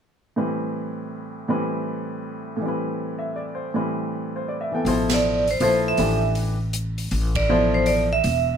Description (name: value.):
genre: modal jazz.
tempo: 160 BPM.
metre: 3/4.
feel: swing 65% on 8ths.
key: A minor.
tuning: A4 = 440 Hz.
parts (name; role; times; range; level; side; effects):
clear upright piano; accompaniment; 0.4-8.1 s; A2 to G5; -24 LUFS; left 1 dB; none.
upright bass; bass; 4.8-8.6 s; E1 to Bb1; -24 LUFS; equal; none.
open jazz drum kit; drums; 4.9-8.3 s; hi-hat, kick drum, ride cymbal, snare drum; -31 LUFS; right 1 dB; none.
vibraphone with medium hard mallets; melody; 5.1-8.6 s; C5 to E5; -21 LUFS; right 3 dB; none.
room: light reverb.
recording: none.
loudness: -21 LUFS.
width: side -8 dB against mid.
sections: 0.4-4.9 A section; 4.9-8.6 B section.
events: band accent 5.0, 7.3.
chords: 0.4 Am9.